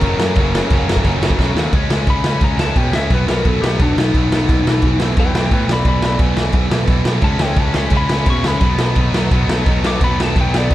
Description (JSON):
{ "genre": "punk rock", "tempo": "174 BPM", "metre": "4/4", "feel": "straight", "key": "E major", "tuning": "A4 = 441 Hz", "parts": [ { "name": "lightly driven lead guitar", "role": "melody", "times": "0.0-10.7 s", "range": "D4 to D6", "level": "-22 LUFS", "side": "left 2 dB", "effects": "tape echo" }, { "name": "overdriven electric guitar", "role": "riff", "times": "0.0-10.7 s", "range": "E2 to C#4", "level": "-24 LUFS", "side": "right 8 dB", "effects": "none" }, { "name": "tight distorted guitar", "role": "riff", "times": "0.0-10.7 s", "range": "E2 to C#4", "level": "-24 LUFS", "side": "left 10 dB", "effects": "distortion" }, { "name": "tight distorted guitar", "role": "riff", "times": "0.0-1.7, 7.2-10.7 s", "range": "F#2 to E4", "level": "-26 LUFS", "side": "equal", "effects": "distortion" }, { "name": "fuzz picked electric bass", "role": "bass", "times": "0.0-10.7 s", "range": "F#1 to B2", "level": "-19 LUFS", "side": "equal", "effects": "overdrive" }, { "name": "raw garage drum kit", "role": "drums", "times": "0.0-10.7 s", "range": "crash cymbal, kick drum, snare drum", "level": "-16 LUFS", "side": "equal", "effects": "none" } ], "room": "little or no reverb", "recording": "none", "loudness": "-13 LUFS", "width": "side -14 dB against mid", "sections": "0.0-1.7 A section; 1.7-10.7 B section", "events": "drum fill 1.4-1.7; lead electric guitar solo 1.7-10.7", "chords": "0.0 F#; 1.7 C#5; 3.1 B; 4.5 E/B; 7.2 C#m; 8.6 B", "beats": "0.03 | 0.37 0.71 1.05 1.40 | 1.74 2.08 2.43 2.77 | 3.11 3.46 3.80 4.14 | 4.49 4.83 5.17 5.52 | 5.86 6.21 6.55 6.89 | 7.24 7.59 7.93 8.28 | 8.62 8.97 9.32 9.67 | 10.02 10.37 10.71" }